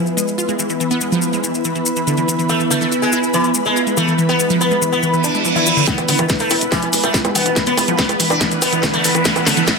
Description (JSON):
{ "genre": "psychedelic trance", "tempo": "142 BPM", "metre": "4/4", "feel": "straight", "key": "E major", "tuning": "A4 = 439 Hz", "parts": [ { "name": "evolving wavetable pad", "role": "sustained chords", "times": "0.0-9.8 s", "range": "B3 to B4", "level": "-22 LUFS", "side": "right 1 dB", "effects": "phaser, built-in reverb, sidechain pumping" }, { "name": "wide unison pluck", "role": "riff", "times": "0.0-9.8 s", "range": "D3 to F4", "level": "-20 LUFS", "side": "right 1 dB", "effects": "auto-pan, sidechain pumping, tape echo" }, { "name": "ethereal airy pad", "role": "texture", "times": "0.0-9.8 s", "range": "E4 to B5", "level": "-25 LUFS", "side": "left 1 dB", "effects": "ensemble chorus, built-in reverb, sidechain pumping" }, { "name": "maracas", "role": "percussion", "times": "0.1-9.8 s", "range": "none", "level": "-24 LUFS", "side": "left 4 dB", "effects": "none" }, { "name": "sitar", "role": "melody", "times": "2.5-9.6 s", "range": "E3 to E4", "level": "-20 LUFS", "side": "left 2 dB", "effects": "phaser, sidechain pumping, tape echo" }, { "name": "reverse cymbal and riser", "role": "sound effects", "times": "5.2-9.8 s", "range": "none", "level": "-24 LUFS", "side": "right 4 dB", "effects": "none" }, { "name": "electronic kick drum", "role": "drums", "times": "5.9-9.8 s", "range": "none", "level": "-20 LUFS", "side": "equal", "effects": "high-pass filter on kick, high-pass filter on room" }, { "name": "garage drum kit", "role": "drums", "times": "5.9-9.8 s", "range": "bongos, hi-hat, snare drum", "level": "-18 LUFS", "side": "right 1 dB", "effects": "low-pass filter on hats, low-pass filter on perc, soft clipping on snare, low-pass filter on snare, low-pass filter on cymbals, low-pass filter on room" }, { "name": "tight sequencer bass", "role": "bass", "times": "6.0-9.6 s", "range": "E1 to E2", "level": "-32 LUFS", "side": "equal", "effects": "none" } ], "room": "wet digital room reverb, RT60 1.1 s", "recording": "dense, heavily limited modern master", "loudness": "-14 LUFS", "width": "side -4 dB against mid", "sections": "0.0-5.9 A section; 5.9-9.8 B section", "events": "filter sweep on synth arpeggio sound 0.0-5.9; reverse cymbal 5.2-5.9; build-up 5.9-9.8; drum fill 5.9-9.8", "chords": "0.0 E5" }